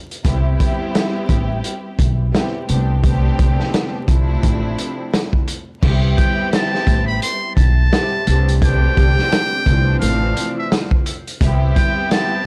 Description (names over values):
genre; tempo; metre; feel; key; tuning
hip hop, boom-bap hip-hop; 86 BPM; 4/4; swing 60% on 16ths; C major; A4 = 440 Hz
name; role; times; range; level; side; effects
vintage drum kit; drums; 0.1-12.3 s; crash cymbal, hi-hat, kick drum, snare drum; -20 LUFS; equal; none
upright bass; bass; 0.2-11.7 s; A1 to C2; -19 LUFS; equal; transformer saturation
warm studio string section; accompaniment; 0.3-12.5 s; C3 to G4; -26 LUFS; equal; cassette tape, high-pass filter, low-pass filter
trumpet with metal mute; melody; 6.2-12.5 s; E5 to C6; -24 LUFS; equal; high-pass filter, low-pass filter, analog delay
room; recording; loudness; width
little or no reverb; dry, gritty hardware recording, vinyl crackle; -17 LUFS; mono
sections
0.0-5.8 A section; 5.8-12.5 B section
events
none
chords
0.2 Cmaj7; 2.7 Am11/C; 4.1 Dm9; 5.8 Cmaj7; 8.3 Am11/C; 9.7 Dm9; 11.4 Cmaj7